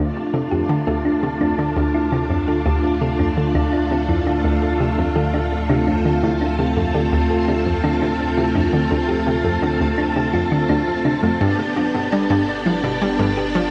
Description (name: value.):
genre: ambient, sequencer-driven space music.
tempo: 84 BPM.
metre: 4/4.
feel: straight.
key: D dorian.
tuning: A4 = 443 Hz.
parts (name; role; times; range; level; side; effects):
string machine, full ensemble; sustained chords; 0.0-13.7 s; A3 to G4; -23 LUFS; equal; ensemble chorus.
thumb-piano-like synth pluck; arpeggios; 0.0-13.5 s; A3 to A4; -27 LUFS; equal; chorus, vintage 12-bit sampler grit, delay.
analog pluck; riff; 0.0-13.6 s; D2 to G3; -24 LUFS; equal; chorus, delay.
warm sub bass; bass; 0.0-13.7 s; G1 to D2; -30 LUFS; equal; none.
wind-like tuned noise texture; texture; 0.3-13.7 s; A4; -30 LUFS; equal; built-in reverb.
room: wet spring reverb, RT60 2.8 s.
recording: echo-heavy mix.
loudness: -19 LUFS.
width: mono.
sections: 0.0-13.7 A section.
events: none.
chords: 0.0 Dm; 11.4 G.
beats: 0.69 1.41 2.12 | 2.84 3.55 4.27 4.98 | 5.70 6.41 7.12 7.84 | 8.55 9.27 9.98 10.70 | 11.41 12.12 12.84 13.55.